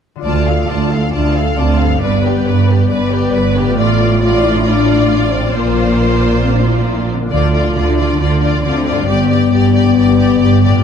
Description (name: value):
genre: cinematic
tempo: 136 BPM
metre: 4/4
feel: straight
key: D minor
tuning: A4 = 441 Hz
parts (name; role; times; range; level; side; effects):
- rich symphonic violin section; second line; 0.2-10.8 s; B4 to F5; -22 LUFS; left 3 dB; none
- concert harp; arpeggios; 0.2-10.8 s; G2 to D5; -22 LUFS; left 5 dB; none
- warm symphonic violin section; melody; 0.3-10.8 s; B4 to A5; -25 LUFS; left 4 dB; none
- rich symphonic viola section; accompaniment; 0.3-10.8 s; F4 to B4; -23 LUFS; right 1 dB; none
- mellow French horn section; sustained chords; 0.3-10.8 s; A3 to F4; -16 LUFS; left 6 dB; none
- rich symphonic double bass section; bass; 0.3-10.8 s; G1 to D2; -16 LUFS; right 3 dB; none
- warm symphonic cello section; bass; 0.3-10.8 s; D2 to D3; -18 LUFS; right 4 dB; none
room: moderate scoring stage reverb, RT60 1.8 s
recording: dark, warm production, lossy compression artefacts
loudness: -11 LUFS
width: side -7 dB against mid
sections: 0.3-10.8 A section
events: none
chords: 0.3 Dm; 2.0 G; 3.8 Dm/A; 5.5 Bbadd9; 7.3 Dm; 9.1 G